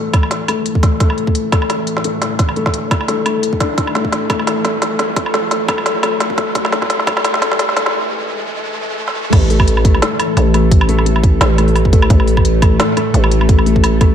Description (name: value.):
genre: half-time drum and bass.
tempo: 173 BPM.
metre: 4/4.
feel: swing 55% on 16ths, half-time.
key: unclear.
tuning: A4 = 440 Hz.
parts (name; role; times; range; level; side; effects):
bowed-like drone; sustained chords; 0.0-14.1 s; A2 to A4; -22 LUFS; left 1 dB; built-in reverb, sidechain pumping.
felt-muted upright piano; arpeggios; 0.0-14.1 s; A3 to D4; -20 LUFS; left 4 dB; ping-pong delay.
riser; sound effects; 0.6-9.3 s; none; -27 LUFS; right 2 dB; none.
electronic kick drum; drums; 0.1-7.1, 9.3-14.1 s; none; -13 LUFS; right 1 dB; overdrive.
organic electronic drum kit; drums; 0.1-14.1 s; crash cymbal, hi-hat, snare drum, toms, woodblock; -18 LUFS; right 1 dB; high-pass filter on hats, high-pass filter on snare, high-pass filter on perc, high-pass filter on toms, high-pass filter on cymbals, high-pass filter on room.
growling 808-style bass; bass; 9.3-14.1 s; A1; -14 LUFS; right 1 dB; tube saturation.
room: moderate lush hall reverb, RT60 1.9 s.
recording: dark, warm production, high-pass filter.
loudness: -12 LUFS.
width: side -9 dB against mid.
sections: 0.0-9.3 A section; 9.3-14.1 B section.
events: build-up 0.0-9.3; drum fill 0.0-7.9, 9.1; filter sweep 0.0-9.3; riser 0.6-9.3; break 7.9-9.3; drop 9.3-14.1.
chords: 0.0 A5.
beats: 0.31 0.66 | 1.00 1.35 1.70 2.04 | 2.39 2.74 3.08 3.43 | 3.78 4.12 4.47 4.82 | 5.17 5.51 5.86 6.21 | 6.55 6.90 7.25 7.59 | 7.94 8.29 8.63 8.98 | 9.33 9.67 10.02 10.37 | 10.71 11.06 11.41 11.76 | 12.10 12.45 12.80 13.14 | 13.49 13.84.